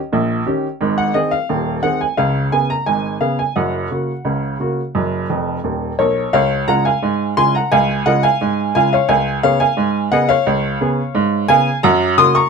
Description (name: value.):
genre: ragtime piano.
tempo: 87 BPM.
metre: 2/4.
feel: straight.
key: F# major, Db major from 6.3 s.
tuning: A4 = 435 Hz.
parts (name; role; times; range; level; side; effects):
clear upright piano; solo; 0.0-12.5 s; D#1 to Eb6; -14 LUFS; right 1 dB; none.
room: light reverb.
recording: none.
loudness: -14 LUFS.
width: side -5 dB against mid.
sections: 0.0-6.3 A section; 6.3-12.5 B section.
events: upright piano fill 5.3-6.3.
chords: 0.0 D#7; 0.8 G#; 2.2 C#5; 3.6 F#; 6.3 Db; 9.1 Db7; 11.8 Gb.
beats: 0.12 | 0.81 1.49 | 2.18 2.87 | 3.56 4.25 | 4.95 5.64 | 6.34 7.03 | 7.72 8.41 | 9.09 9.78 | 10.46 11.15 | 11.83.